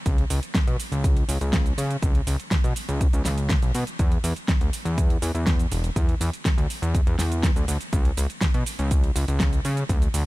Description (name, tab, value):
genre	nu-disco, nu disco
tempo	122 BPM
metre	4/4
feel	straight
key	unclear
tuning	A4 = 441 Hz
part	fat analog bass	bass	0.1-10.2 s	E1 to C#3	-24 LUFS	equal	none
part	electronic kick drum	drums	0.1-10.0 s	none	-22 LUFS	equal	none
part	pop drum kit	drums	0.1-10.2 s	hi-hat, shaker, snare drum	-29 LUFS	right 1 dB	none
room	digital ambience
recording	none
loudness	-21 LUFS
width	side -19 dB against mid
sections	0.0-10.3 A section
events	none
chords	none